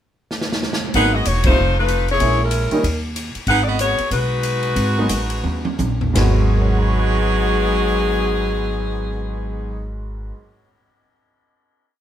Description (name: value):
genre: jazz, big band swing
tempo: 161-190 BPM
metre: 4/4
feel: swing 60% on 8ths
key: G# minor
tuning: A4 = 440 Hz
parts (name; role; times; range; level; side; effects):
- swinging big-band drum kit; drums; 0.3-6.3 s; hi-hat, kick drum, ride cymbal, snare drum, toms; -24 LUFS; right 1 dB; none
- clear upright piano; accompaniment; 0.9-2.8, 5.0-10.9 s; G#2 to A#6; -25 LUFS; right 1 dB; none
- upright bass; bass; 0.9-10.3 s; E1 to D#2; -21 LUFS; equal; none
- bright saxophone section; melody; 1.0-9.9 s; F#3 to F#5; -20 LUFS; left 1 dB; none
room: moderate studio ambience, RT60 0.5 s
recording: band playing live in one room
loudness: -16 LUFS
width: side -10 dB against mid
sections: 0.0-0.9 pickup bar; 0.9-6.2 A section; 6.2-9.1 final chord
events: drum fill 0.3-0.9, 5.4-6.2; band accent 1.4; slowing down 3.5-6.2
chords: 0.0 N.C.; 0.9 G#m7; 1.6 F7; 2.2 A#m7b5; 2.8 N.C.; 3.5 G#m7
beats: 0.31 0.62 | 0.94 1.25 1.57 1.89 | 2.20 2.52 2.83 3.15 | 3.47 3.79 4.11 4.43 | 4.76 5.10 5.44 5.80 | 6.16 6.53 6.91 7.28 | 7.65 8.02 8.39 8.76